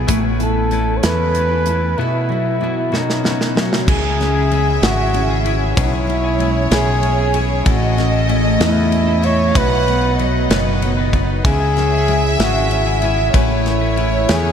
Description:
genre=six-eight pop ballad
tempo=63 BPM (dotted quarters)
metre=6/8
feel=straight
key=unclear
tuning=A4 = 441 Hz
part: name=fingerpicked steel-string acoustic guitar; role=accompaniment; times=0.0-14.5 s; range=A2 to C#5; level=-21 LUFS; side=left 1 dB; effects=double-tracked left and right
part: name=clean electric guitar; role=arpeggios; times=0.0-14.5 s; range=A2 to B4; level=-27 LUFS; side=left 6 dB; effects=wide subtle chorus, diffuse ambient delay
part: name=mellow fretless electric bass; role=bass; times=0.0-14.5 s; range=F#1 to E2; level=-19 LUFS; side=equal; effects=none
part: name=modern studio drum kit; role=drums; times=0.1-14.4 s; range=crash cymbal, hi-hat, kick drum, ride cymbal, snare drum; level=-21 LUFS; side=equal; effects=none
part: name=breathy flugelhorn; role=melody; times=0.4-14.5 s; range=D#4 to C#5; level=-20 LUFS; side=equal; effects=diffuse ambient delay
part: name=warm studio violin section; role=second line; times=3.9-14.5 s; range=C#5 to F#5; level=-23 LUFS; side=right 1 dB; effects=diffuse ambient delay
room=moderate huge ambient reverb, RT60 5.3 s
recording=dreamy mix soaked in reverb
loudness=-14 LUFS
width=side -8 dB against mid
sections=0.0-3.9 A section; 3.9-14.5 B section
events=drum fill 2.9-3.9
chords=0.1 Aadd9; 2.0 Bsus4; 2.9 Badd9; 3.9 C#m; 5.8 E6/B; 7.7 A; 9.6 B; 11.4 C#m; 13.3 Aadd9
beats=| 0.08 1.03 | 1.98 2.92 | 3.87 4.82 | 5.76 6.71 | 7.66 8.61 | 9.55 10.50 | 11.45 12.39 | 13.34 14.29

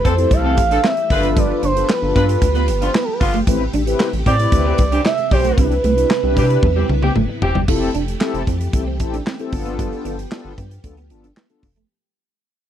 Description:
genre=early-eighties boogie funk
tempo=114 BPM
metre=4/4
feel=straight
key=unclear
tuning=A4 = 440 Hz
part: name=expressive portamento lead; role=melody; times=0.0-7.4 s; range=A4 to F5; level=-20 LUFS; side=right 4 dB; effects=chorus, phaser, slapback echo
part: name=string machine, violins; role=sustained chords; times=0.0-11.9 s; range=C3 to G4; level=-28 LUFS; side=equal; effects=ensemble chorus
part: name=rubbery square bass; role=bass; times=0.0-11.8 s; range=F1 to C3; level=-20 LUFS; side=equal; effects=none
part: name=mellow horn section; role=second line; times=0.1-7.6 s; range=D3 to B4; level=-24 LUFS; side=left 2 dB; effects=none
part: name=electric guitar at the edge of break-up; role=riff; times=0.1-11.8 s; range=G3 to F4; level=-24 LUFS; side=right 3 dB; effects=ensemble chorus
part: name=modern studio drum kit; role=drums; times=0.1-11.9 s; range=crash cymbal, handclaps, hi-hat, kick drum, snare drum, toms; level=-20 LUFS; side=equal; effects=none
part: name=mellow synth brass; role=accompaniment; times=0.2-11.7 s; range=B3 to B4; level=-23 LUFS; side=left 4 dB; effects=chorus
room=small room ambience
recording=dry, close 1970s-style studio recording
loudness=-15 LUFS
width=side -10 dB against mid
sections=0.0-7.7 A section; 7.7-11.9 B section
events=drum fill 6.6-7.7; fade-out 7.7-11.9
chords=0.0 Fmaj9; 1.1 G7; 3.5 Am7; 5.6 Fmaj9; 9.5 G7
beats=0.31 0.84 | 1.37 1.89 2.42 2.94 | 3.47 4.00 4.52 5.05 | 5.58 6.10 6.63 7.16 | 7.68 8.21 8.73 9.26 | 9.79 10.31 10.84 11.37

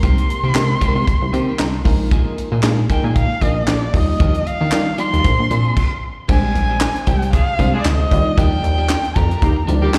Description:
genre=early-eighties boogie funk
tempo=115 BPM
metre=4/4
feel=swing 56% on 16ths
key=unclear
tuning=A4 = 440 Hz
part: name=warm erhu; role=melody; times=0.0-9.7 s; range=D5 to C6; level=-25 LUFS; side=equal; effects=slapback echo, tape echo
part: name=mellow FM electric piano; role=accompaniment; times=0.0-10.0 s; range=G3 to Bb5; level=-27 LUFS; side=equal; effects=chorus, slapback echo
part: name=clean electric guitar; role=riff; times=0.0-10.0 s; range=Eb3 to Ab4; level=-31 LUFS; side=equal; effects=lush chorus
part: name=plucky analog bass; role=bass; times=0.0-9.9 s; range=Bb1 to Eb3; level=-20 LUFS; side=equal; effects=none
part: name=tight funk drum kit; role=drums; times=0.0-10.0 s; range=crash cymbal, handclaps, hi-hat, kick drum, snare drum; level=-21 LUFS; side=equal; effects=none
part: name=group handclap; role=percussion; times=0.5-10.0 s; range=none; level=-31 LUFS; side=equal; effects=none
part: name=warm horn section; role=second line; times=7.3-10.0 s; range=D3 to Ab4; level=-28 LUFS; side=equal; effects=none
room=studio ambience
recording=live gig heard through the venue's PA, recital hall reverb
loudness=-17 LUFS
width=mono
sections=0.0-6.3 A section; 6.3-10.0 B section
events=FM electric piano fill 1.1-2.1; stop 5.8-6.3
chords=0.0 Abmaj9/C; 1.9 Bb7sus4; 3.9 Ebmaj9; 5.2 Bb9; 6.3 Bb13; 8.1 Ebmaj9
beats=| 0.03 0.55 1.07 1.59 | 2.12 2.64 3.16 3.68 | 4.20 4.72 5.25 5.77 | 6.29 6.81 7.33 7.86 | 8.38 8.90 9.42 9.94

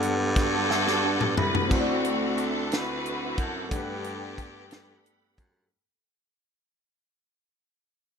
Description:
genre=slow gospel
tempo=60 BPM (dotted quarters)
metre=6/8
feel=straight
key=G major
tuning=A4 = 440 Hz
part: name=clear baby grand piano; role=accompaniment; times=0.0-5.7 s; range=G2 to F#5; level=-31 LUFS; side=left 2 dB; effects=none
part: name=bright tonewheel organ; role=sustained chords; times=0.0-5.7 s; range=G3 to D6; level=-35 LUFS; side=right 3 dB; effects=slow rotary speaker, overdrive, chorus vibrato
part: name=bright baritone saxophone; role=bass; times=0.0-5.7 s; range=C2 to G2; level=-30 LUFS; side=equal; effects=none
part: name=tight funk drum kit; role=drums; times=0.0-5.5 s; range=crash cymbal, hi-hat, kick drum, snare drum, toms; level=-29 LUFS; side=left 1 dB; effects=none
part: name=rich symphonic string section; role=melody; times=0.4-5.4 s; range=A3 to B4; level=-29 LUFS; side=left 2 dB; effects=none
part: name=electric guitar with an envelope filter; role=second line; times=0.7-1.9 s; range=G3 to E5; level=-33 LUFS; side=right 10 dB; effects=tape echo
room=light reverb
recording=none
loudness=-24 LUFS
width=side -6 dB against mid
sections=0.0-1.7 A section; 1.7-5.7 B section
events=drum fill 0.7-1.7; fade-out 1.7-5.7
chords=0.0 Gmaj9; 1.7 D9; 3.7 Gmaj9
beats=0.70 | 1.70 2.71 | 3.71 4.71

